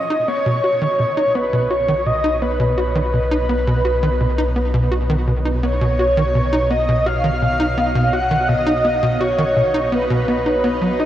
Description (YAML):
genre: ambient, sequencer-driven space music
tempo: 84 BPM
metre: 4/4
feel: straight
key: B major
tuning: A4 = 440 Hz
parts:
  - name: breathy flute-like synth lead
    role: melody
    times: 0.0-11.1 s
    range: B4 to F#5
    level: -19 LUFS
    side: equal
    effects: ensemble chorus, tape echo
  - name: sweeping resonant pad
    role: sustained chords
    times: 0.0-11.1 s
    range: B3 to E#5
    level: -30 LUFS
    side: right 1 dB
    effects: chorus
  - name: analog drone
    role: bass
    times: 1.6-11.1 s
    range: B1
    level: -23 LUFS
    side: equal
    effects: chorus
  - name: bubbling stepped-filter texture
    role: texture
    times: 0.0-11.1 s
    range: D#4 to D#5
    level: -37 LUFS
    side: equal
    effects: none
  - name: tight sequencer bass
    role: riff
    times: 0.1-11.1 s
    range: B2 to F#4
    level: -20 LUFS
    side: equal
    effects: lush chorus, tape echo
room: wet huge ambient reverb, RT60 8.1 s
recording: worn, warbling old tape, cassette tape, warbly pitch drift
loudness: -15 LUFS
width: side -12 dB against mid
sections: 0.0-11.1 A section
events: fade-in on analog synth pad 0.0-11.1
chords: 0.0 Badd9